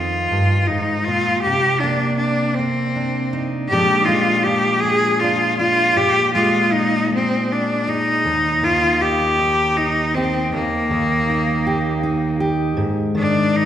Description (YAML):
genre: acoustic folk-pop ballad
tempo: 53 BPM (dotted quarters)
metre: 6/8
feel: straight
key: Eb major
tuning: A4 = 441 Hz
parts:
  - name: bright cello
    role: melody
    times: 0.0-13.7 s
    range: Bb3 to Ab4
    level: -18 LUFS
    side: left 1 dB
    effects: none
  - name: fingerpicked steel-string acoustic guitar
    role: accompaniment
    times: 0.0-13.7 s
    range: Eb2 to Ab4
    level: -20 LUFS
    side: equal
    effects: none
room: wet concert hall reverb, RT60 1.8 s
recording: recorded in a church or concert hall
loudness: -16 LUFS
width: side -10 dB against mid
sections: 0.0-8.2 A section; 8.2-13.7 B section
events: none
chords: 0.0 Fm7; 1.4 Cm9; 3.7 Bb7; 8.2 Eb; 12.8 Ab5